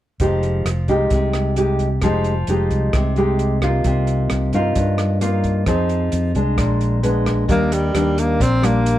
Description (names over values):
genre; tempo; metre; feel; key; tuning
bossa nova; 132 BPM; 4/4; straight; unclear; A4 = 440 Hz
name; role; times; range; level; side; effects
nylon-string guitar; accompaniment; 0.2-9.0 s; G2 to Ab4; -19 LUFS; equal; none
fingered electric bass; bass; 0.2-9.0 s; F1 to G2; -20 LUFS; equal; none
open jazz drum kit; drums; 0.2-9.0 s; hi-hat, kick drum, rim click; -25 LUFS; equal; none
breathy tenor saxophone; melody; 7.5-9.0 s; G3 to C4; -19 LUFS; equal; none
room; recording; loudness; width
little or no reverb; dark, warm production; -16 LUFS; side -13 dB against mid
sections
0.2-7.5 A section; 7.5-9.0 B section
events
none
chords
0.2 Fm9; 3.8 Cm7; 5.7 Fm7; 6.6 Bb7b9; 7.5 Ebmaj7